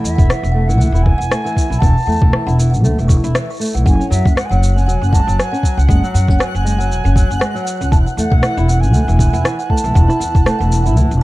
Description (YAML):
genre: folktronica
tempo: 118 BPM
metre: 4/4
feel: swing 56% on 16ths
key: unclear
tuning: A4 = 440 Hz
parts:
  - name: baroque flute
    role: melody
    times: 0.0-11.2 s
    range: E5 to A5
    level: -23 LUFS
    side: right 1 dB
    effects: tape echo
  - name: flamenco guitar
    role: arpeggios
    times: 0.0-11.1 s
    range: E3 to E4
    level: -22 LUFS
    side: equal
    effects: vintage 12-bit sampler grit, tape echo
  - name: upright bass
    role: bass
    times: 0.0-11.2 s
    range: E1 to F#2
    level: -14 LUFS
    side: equal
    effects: none
  - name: electronic shaker and rim click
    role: drums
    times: 0.1-11.2 s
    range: none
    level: -24 LUFS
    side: equal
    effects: studio reverb
  - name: kalimba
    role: second line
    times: 0.2-11.0 s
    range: E5 to C#6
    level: -28 LUFS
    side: right 2 dB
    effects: tape echo
  - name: electronic kick drum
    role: drums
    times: 0.2-10.4 s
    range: none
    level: -13 LUFS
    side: equal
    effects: studio reverb
  - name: twinkling granular texture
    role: texture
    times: 4.3-11.2 s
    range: F#5 to F#6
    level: -32 LUFS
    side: equal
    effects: built-in reverb
room: small room ambience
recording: dark, warm production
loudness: -12 LUFS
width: side -18 dB against mid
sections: 0.0-11.2 A section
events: none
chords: 0.0 Esus4; 3.9 F#sus2; 7.9 Esus4